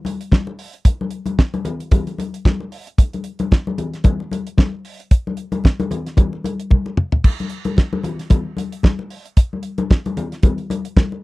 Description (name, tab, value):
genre	disco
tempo	113 BPM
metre	4/4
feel	swing 56% on 16ths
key	none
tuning	none
part	congas	percussion	0.0-11.2 s	none	-23 LUFS	left 3 dB	none
part	damped 70s drum kit	drums	0.1-11.1 s	crash cymbal, hi-hat, kick drum, snare drum, toms	-13 LUFS	equal	none
room	little or no reverb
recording	dry, close 1970s-style studio recording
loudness	-17 LUFS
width	side -20 dB against mid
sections	0.0-7.2 A section; 7.2-11.2 A section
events	drum fill 6.7-7.2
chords	none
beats	0.32 | 0.85 1.38 1.92 2.45 | 2.98 3.51 4.05 4.58 | 5.11 5.64 6.18 6.71 | 7.24 7.77 8.31 8.84 | 9.37 9.90 10.44 10.97